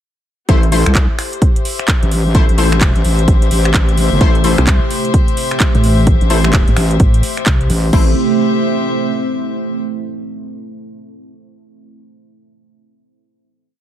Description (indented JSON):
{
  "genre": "bass house",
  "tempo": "129 BPM",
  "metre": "4/4",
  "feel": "swing 62% on 16ths",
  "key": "A minor",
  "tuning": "A4 = 439 Hz",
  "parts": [
    { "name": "deep dark ambient pad", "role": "sustained chords", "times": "3.7-8.1 s", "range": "A3 to E4", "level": "-20 LUFS", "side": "right 3 dB", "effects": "chorus, built-in reverb, sidechain pumping" },
    { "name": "orchestra-hit-like synth stab", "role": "stabs", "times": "0.5-8.1 s", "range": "A3 to C5", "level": "-20 LUFS", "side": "left 4 dB", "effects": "built-in reverb, sidechain pumping, digital delay" },
    { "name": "wobble bass", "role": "bass", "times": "0.5-8.1 s", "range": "G1 to C2", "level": "-14 LUFS", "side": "equal", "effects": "chorus, sidechain pumping" },
    { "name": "electronic kick drum", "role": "drums", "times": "0.5-8.0 s", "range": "none", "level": "-13 LUFS", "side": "equal", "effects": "none" },
    { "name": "house drum kit", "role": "drums", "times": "0.5-8.0 s", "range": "crash cymbal, finger snaps, handclaps, hi-hat", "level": "-21 LUFS", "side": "right 1 dB", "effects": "none" },
    { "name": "warm chamber string section", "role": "texture", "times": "0.5-9.8 s", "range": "G4 to E5", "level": "-22 LUFS", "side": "left 4 dB", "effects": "sidechain pumping" },
    { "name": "pulsing pluck wobble bass", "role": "bass", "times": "4.6-7.7 s", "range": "A1 to C2", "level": "-14 LUFS", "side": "equal", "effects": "chorus, tube saturation, sidechain pumping" }
  ],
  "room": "little or no reverb",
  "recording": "none",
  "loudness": "-11 LUFS",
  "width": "side -11 dB against mid",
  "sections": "0.5-7.9 drop; 7.9-9.8 final chord",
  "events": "drop 0.5-7.9",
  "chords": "0.5 Am"
}